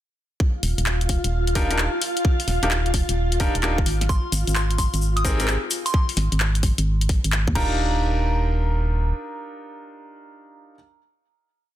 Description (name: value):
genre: UK garage, two-step garage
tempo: 130 BPM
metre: 4/4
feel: swing 66% on 16ths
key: Eb major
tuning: A4 = 441 Hz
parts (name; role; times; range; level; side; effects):
- soft string machine; sustained chords; 0.6-6.0 s; F4 to F5; -29 LUFS; equal; ensemble chorus, sidechain pumping
- electronic kick drum; drums; 0.4-7.7 s; none; -22 LUFS; equal; overdrive
- organ-like FM bass; bass; 0.6-9.1 s; Eb1 to Eb2; -22 LUFS; equal; none
- garage drum kit; drums; 0.6-7.7 s; crash cymbal, handclaps, hi-hat, snare drum; -27 LUFS; left 2 dB; none
- bright grand piano; stabs; 1.6-10.7 s; C4 to Bb4; -27 LUFS; equal; ping-pong delay
- soft synth bell; melody; 4.1-10.7 s; Bb5 to Eb6; -31 LUFS; right 1 dB; chorus, tape echo
- cabasa; percussion; 4.1-5.9 s; none; -30 LUFS; left 3 dB; none
room: light reverb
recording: dense, heavily limited modern master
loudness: -20 LUFS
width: side -13 dB against mid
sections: 0.4-7.8 groove; 7.8-11.5 final hit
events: none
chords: 0.4 Ebmaj9; 3.9 N.C.; 7.6 Ebmaj9